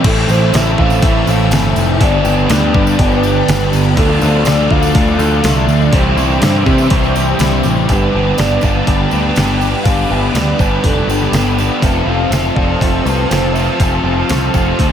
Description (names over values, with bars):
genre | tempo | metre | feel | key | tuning
rock, shoegaze and dream pop | 122 BPM | 4/4 | straight | unclear | A4 = 442 Hz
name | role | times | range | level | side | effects
sweeping resonant pad | sustained chords | 0.0-14.9 s | C4 to F6 | -24 LUFS | right 1 dB | chorus
clean electric guitar | arpeggios | 0.0-14.9 s | E3 to A4 | -23 LUFS | left 6 dB | analog chorus, analog delay
biting overdriven guitar | riff | 0.0-14.9 s | G2 to B4 | -20 LUFS | left 10 dB | ensemble chorus
overdriven electric guitar | riff | 0.0-14.9 s | G2 to A4 | -19 LUFS | right 9 dB | reverse reverb
raw garage guitar | riff | 0.0-14.9 s | F2 to D4 | -23 LUFS | left 1 dB | overdrive, ensemble chorus
growling picked electric bass | bass | 0.0-14.9 s | F1 to C3 | -16 LUFS | equal | overdrive
detuned 8-bit digital drum machine | drums | 0.0-14.9 s | crash cymbal, hi-hat, kick drum, snare drum | -16 LUFS | equal | none
pure breathy sine lead | melody | 0.1-14.0 s | A4 to G5 | -22 LUFS | equal | chorus, phaser, analog delay
tambourine | percussion | 0.3-14.9 s | none | -31 LUFS | right 9 dB | none
room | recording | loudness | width
moderate plate reverb, RT60 1.4 s | dreamy mix soaked in reverb | -11 LUFS | side -9 dB against mid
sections
0.0-7.9 A section; 7.9-14.9 B section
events
none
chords
0.0 Am; 2.0 G; 4.0 Dm; 5.9 Cadd9; 7.9 Gadd9; 11.8 Fmaj7